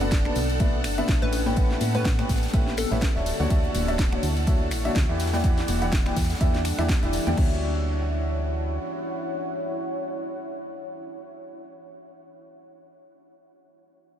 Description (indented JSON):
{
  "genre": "piano house",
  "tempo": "124 BPM",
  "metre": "4/4",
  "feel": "swing 57% on 16ths",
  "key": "D major",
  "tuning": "A4 = 442 Hz",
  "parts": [
    { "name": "string machine, violins", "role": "sustained chords", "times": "0.0-7.4 s", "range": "A4 to F#5", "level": "-38 LUFS", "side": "equal", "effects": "ensemble chorus, sidechain pumping" },
    { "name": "clear upright piano", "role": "riff", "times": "0.0-11.6 s", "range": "A2 to A5", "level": "-30 LUFS", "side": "equal", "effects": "lush chorus, sidechain pumping, ping-pong delay" },
    { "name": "solid FM bass", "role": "bass", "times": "0.0-8.8 s", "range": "D1 to A2", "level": "-27 LUFS", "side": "equal", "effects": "sidechain pumping" },
    { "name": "house drum kit", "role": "drums", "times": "0.0-7.5 s", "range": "crash cymbal, finger snaps, hi-hat, ride cymbal, snare drum", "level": "-33 LUFS", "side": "equal", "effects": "overdrive" },
    { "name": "tambourine and congas", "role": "percussion", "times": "0.0-7.4 s", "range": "none", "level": "-34 LUFS", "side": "left 4 dB", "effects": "none" },
    { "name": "deep dark ambient pad", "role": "texture", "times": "0.0-11.8 s", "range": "G3 to C#6", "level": "-33 LUFS", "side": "left 1 dB", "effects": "chorus, built-in reverb, sidechain pumping" },
    { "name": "electronic kick drum", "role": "drums", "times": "0.1-7.5 s", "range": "none", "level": "-23 LUFS", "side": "equal", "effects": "none" },
    { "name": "tight funk drum kit", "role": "drums", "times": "0.1-7.4 s", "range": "hi-hat, snare drum", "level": "-44 LUFS", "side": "left 2 dB", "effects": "none" },
    { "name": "hollow square pluck", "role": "melody", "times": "1.2-3.2 s", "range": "A4 to B4", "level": "-37 LUFS", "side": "left 2 dB", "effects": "none" }
  ],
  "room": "light reverb, studio reverb",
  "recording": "none",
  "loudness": "-22 LUFS",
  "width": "side -10 dB against mid",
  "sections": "0.0-7.4 A section; 7.4-11.2 B section",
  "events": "drop 0.0-7.4",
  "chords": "0.0 Bm7; 1.3 Dmaj9; 5.2 Em9; 7.4 Dmaj9",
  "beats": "0.12 0.60 1.08 | 1.57 2.05 2.54 3.02 | 3.50 3.99 4.47 4.96 | 5.44 5.92 6.41 6.89 | 7.37 7.86 8.34 8.83 | 9.31 9.79 10.28 10.76"
}